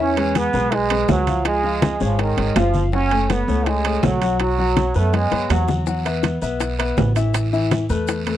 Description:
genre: latin, salsa.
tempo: 163 BPM.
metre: 4/4.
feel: straight.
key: E major.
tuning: A4 = 435 Hz.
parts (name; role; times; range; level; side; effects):
brilliant trombone section; melody; 0.0-5.8 s; D#3 to C#4; -21 LUFS; right 4 dB; none.
clear concert grand piano; accompaniment; 0.0-8.4 s; E3 to F#5; -23 LUFS; left 5 dB; none.
upright bass; bass; 0.0-8.4 s; F#1 to F#2; -22 LUFS; right 1 dB; none.
congas; percussion; 0.2-8.4 s; none; -25 LUFS; left 1 dB; none.
timbales; percussion; 0.2-8.4 s; none; -25 LUFS; right 9 dB; none.
bongos; percussion; 0.4-8.3 s; none; -24 LUFS; left 8 dB; none.
guiro; percussion; 0.4-8.4 s; none; -36 LUFS; right 10 dB; none.
maracas; percussion; 5.9-8.4 s; none; -38 LUFS; left 21 dB; none.
room: little or no reverb.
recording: dry, close 1970s-style studio recording.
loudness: -17 LUFS.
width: side -12 dB against mid.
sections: 0.0-8.4 A section.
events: drum fill 5.1-5.9.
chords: 0.0 E; 1.5 C#; 2.9 F#m; 4.4 Bsus2; 5.9 Esus2; 7.3 Asus2.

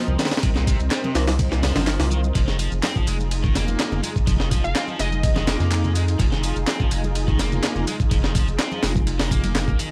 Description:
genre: breakbeat, breaks.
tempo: 125 BPM.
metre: 4/4.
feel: straight.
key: F minor.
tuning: A4 = 442 Hz.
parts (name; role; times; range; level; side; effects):
lush unison pad; sustained chords; 0.0-9.9 s; C4 to Eb5; -33 LUFS; equal; chorus, phaser, sidechain pumping.
crunchy overdriven guitar; riff; 0.0-9.9 s; Bb2 to C4; -32 LUFS; equal; tape echo.
saturated sub bass; bass; 0.1-9.8 s; F1 to F2; -26 LUFS; equal; none.
garage drum kit; drums; 0.1-9.9 s; handclaps, hi-hat, shaker; -34 LUFS; equal; studio reverb.
congas; percussion; 0.1-9.8 s; none; -34 LUFS; equal; none.
breakbeat sampler-style drum kit; drums; 0.2-9.9 s; hi-hat, kick drum, ride cymbal, snare drum; -25 LUFS; equal; studio reverb.
swell; sound effects; 1.7-2.4 s; none; -39 LUFS; equal; none.
glassy wavetable pluck; melody; 4.6-5.5 s; Eb5 to F5; -32 LUFS; equal; chorus, AM radio sound, tape echo.
room: little or no reverb.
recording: dry, gritty hardware recording, vinyl crackle.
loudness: -21 LUFS.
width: mono.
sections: 0.0-9.9 A section.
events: none.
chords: 0.0 Cm7; 2.4 Fm7.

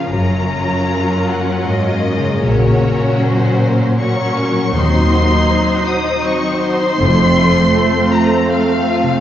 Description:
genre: classical, slow romantic movement for symphony orchestra.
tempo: 79 BPM.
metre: 3/4.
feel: rubato.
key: unclear.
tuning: A4 = 440 Hz.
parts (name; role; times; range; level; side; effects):
clear symphonic violin section; melody; 0.0-9.2 s; C5 to Eb6; -20 LUFS; left 3 dB; none.
rich symphonic violin section; second line; 0.0-9.2 s; A3 to C5; -21 LUFS; left 1 dB; none.
warm symphonic viola section; accompaniment; 0.0-9.2 s; Gb3 to Eb4; -19 LUFS; right 2 dB; none.
concert harp; arpeggios; 0.0-9.2 s; F2 to Gb5; -19 LUFS; left 2 dB; none.
rich symphonic cello section; bass; 0.0-7.6 s; Eb2 to Bb2; -19 LUFS; right 1 dB; none.
rich symphonic double bass section; bass; 0.1-7.6 s; F1 to Eb2; -21 LUFS; equal; none.
room: wet concert hall reverb, RT60 2.3 s.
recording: heard from further back in the room, vinyl crackle, nothing above 7.5 kHz.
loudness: -12 LUFS.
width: side -11 dB against mid.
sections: 0.0-9.2 A section.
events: none.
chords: 0.1 Gbmaj7; 2.4 Gb/Bb; 4.8 Cdim/Eb; 7.0 F.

